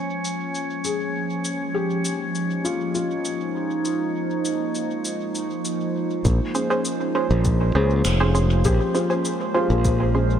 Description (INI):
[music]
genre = ambient dub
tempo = 100 BPM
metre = 4/4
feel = straight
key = Bb dorian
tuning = A4 = 440 Hz
[part]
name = warbly tape-like pad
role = sustained chords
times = 0.0-10.4 s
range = F3 to C5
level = -26 LUFS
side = right 2 dB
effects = chorus, built-in reverb, phaser
[part]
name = felt-muted upright piano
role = arpeggios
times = 0.0-10.4 s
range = F4 to Ab4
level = -29 LUFS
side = left 4 dB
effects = low-pass filter, dub echo
[part]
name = drifting glass-harmonics texture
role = texture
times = 0.0-6.3 s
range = Db4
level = -31 LUFS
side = left 2 dB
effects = chorus, built-in reverb
[part]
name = electronic shaker and finger snaps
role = drums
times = 0.2-10.0 s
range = none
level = -32 LUFS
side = left 1 dB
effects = low-pass filter on perc, low-pass filter on snare, low-pass filter on room, dub echo
[part]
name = modern bright fingered electric bass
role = bass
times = 6.2-10.4 s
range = F1 to Db2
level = -19 LUFS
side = equal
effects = none
[part]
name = electronic kick drum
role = drums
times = 6.2-10.0 s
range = none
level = -24 LUFS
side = equal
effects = none
[part]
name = filtered dub chord stab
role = stabs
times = 6.5-10.3 s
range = Db4 to C5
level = -25 LUFS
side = right 3 dB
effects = chorus, dub echo
[sound]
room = light reverb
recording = none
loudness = -20 LUFS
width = side -9 dB against mid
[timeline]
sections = 0.0-6.2 A section; 6.2-10.4 B section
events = filter sweep on ambient pad 0.0-6.2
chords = 0.0 Bbm9